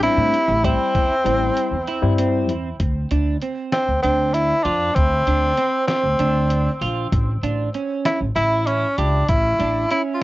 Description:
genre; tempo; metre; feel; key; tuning
progressive instrumental, band music in an uneven meter; 194 BPM (eighths); 7/8; straight; D minor; A4 = 439 Hz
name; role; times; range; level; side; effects
bright tenor saxophone; melody; 0.0-10.2 s; C4 to F4; -20 LUFS; equal; cassette tape, analog delay
mellow tine electric piano; accompaniment; 0.0-2.5 s; G3 to E4; -23 LUFS; left 7 dB; overdrive, cassette tape
clean electric guitar; arpeggios; 0.0-10.2 s; C4 to G4; -26 LUFS; right 5 dB; analog chorus, cassette tape, analog delay
upright bass; bass; 0.0-9.8 s; A1 to A2; -22 LUFS; equal; none
lo-fi sampler-style drum kit; drums; 0.0-10.1 s; hi-hat, kick drum, snare drum; -23 LUFS; equal; none
room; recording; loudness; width
moderate booth ambience, RT60 0.2 s; home recording on cassette, nothing above 7.8 kHz; -17 LUFS; side -17 dB against mid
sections
0.0-2.8 A section; 2.8-10.2 B section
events
break 1.6-2.8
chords
0.0 Am7; 2.8 Dm7; 7.1 A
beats
0.02 0.33 | 0.64 0.95 1.26 1.57 1.87 2.18 2.49 | 2.80 3.11 3.42 3.73 4.04 4.34 4.65 | 4.96 5.27 5.58 5.89 6.20 6.51 6.82 | 7.12 7.43 7.74 8.05 8.36 8.67 8.98 | 9.29 9.60 9.91 10.22

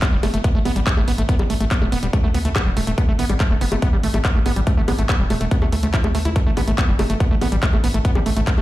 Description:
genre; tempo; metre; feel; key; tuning
psychedelic trance; 142 BPM; 4/4; straight; unclear; A4 = 441 Hz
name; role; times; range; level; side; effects
overdriven acid bass; riff; 0.0-8.6 s; G3 to E4; -24 LUFS; right 1 dB; distortion, auto-pan, sidechain pumping, ping-pong delay
big-room dance drum kit; drums; 0.0-8.6 s; bongos, handclaps, hi-hat; -26 LUFS; left 2 dB; overdrive
electronic kick drum; drums; 0.0-8.6 s; none; -19 LUFS; equal; overdrive
granular cloud pad; texture; 0.2-8.6 s; E4 to A5; -41 LUFS; equal; none
tight sequencer bass; bass; 0.1-8.6 s; E1 to D2; -21 LUFS; equal; tube saturation
room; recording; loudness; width
little or no reverb; played on a big sound system in a bare room, large studio reverb; -16 LUFS; side -16 dB against mid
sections
0.0-8.6 A section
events
none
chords
0.0 A5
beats
0.02 0.44 0.87 | 1.29 1.71 2.13 2.56 | 2.98 3.40 3.82 4.25 | 4.67 5.09 5.51 5.94 | 6.36 6.78 7.20 7.63 | 8.05 8.47

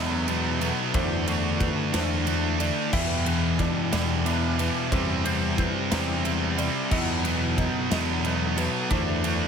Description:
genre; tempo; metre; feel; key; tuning
post-rock; 60 BPM (dotted quarters); 6/8; straight; E minor; A4 = 445 Hz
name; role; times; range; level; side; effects
pedal steel guitar; sustained chords; 0.0-9.5 s; B3 to G5; -40 LUFS; left 3 dB; none
felt-muted upright piano; arpeggios; 0.0-9.5 s; B4 to E5; -37 LUFS; right 6 dB; digital delay
twangy electric guitar; arpeggios; 0.0-9.5 s; E3 to C5; -37 LUFS; left 2 dB; ensemble chorus, digital delay
distorted electric guitar; riff; 0.0-9.5 s; E2 to D4; -28 LUFS; right 12 dB; overdrive
thick fuzz guitar; riff; 0.0-9.5 s; E2 to D4; -29 LUFS; left 10 dB; distortion
growling picked electric bass; bass; 0.0-9.5 s; E2; -28 LUFS; equal; overdrive
big rock drum kit; drums; 0.3-9.4 s; crash cymbal, kick drum, ride cymbal, snare drum; -30 LUFS; equal; none
room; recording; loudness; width
light reverb, studio ambience; none; -23 LUFS; side -7 dB against mid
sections
0.0-9.5 A section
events
none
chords
0.0 B7/E; 0.9 Dadd9/E; 2.9 Em7; 4.9 C/E; 6.9 B7/E; 8.9 Dadd9/E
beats
| 0.94 1.94 | 2.93 3.92 | 4.92 5.91 | 6.91 7.91 | 8.91

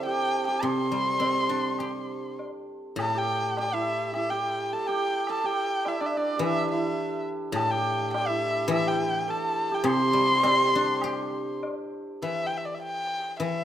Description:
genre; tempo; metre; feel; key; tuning
chinese traditional, Chinese chamber ensemble; 104 BPM; 4/4; rubato; C gong mode; A4 = 443 Hz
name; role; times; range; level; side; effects
warm erhu; melody; 0.0-13.6 s; D5 to C6; -27 LUFS; left 1 dB; none
hammered dulcimer; second line; 0.0-12.8 s; C4 to C5; -30 LUFS; right 3 dB; none
guzheng; accompaniment; 0.0-13.6 s; A2 to G4; -31 LUFS; left 2 dB; none
woodblock; percussion; 0.6-11.8 s; none; -37 LUFS; left 2 dB; none
room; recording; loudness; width
moderate recital hall reverb, RT60 1.5 s; close, detailed microphones; -24 LUFS; side -11 dB against mid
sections
0.0-3.0 A section; 3.0-12.2 B section; 12.2-13.6 A section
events
none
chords
none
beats
0.06 | 0.63 1.21 1.79 2.39 | 2.99 3.58 4.15 4.72 | 5.28 5.84 6.41 6.98 | 7.55 8.13 8.70 9.28 | 9.85 10.44 11.02 11.63 | 12.24 12.83 13.42

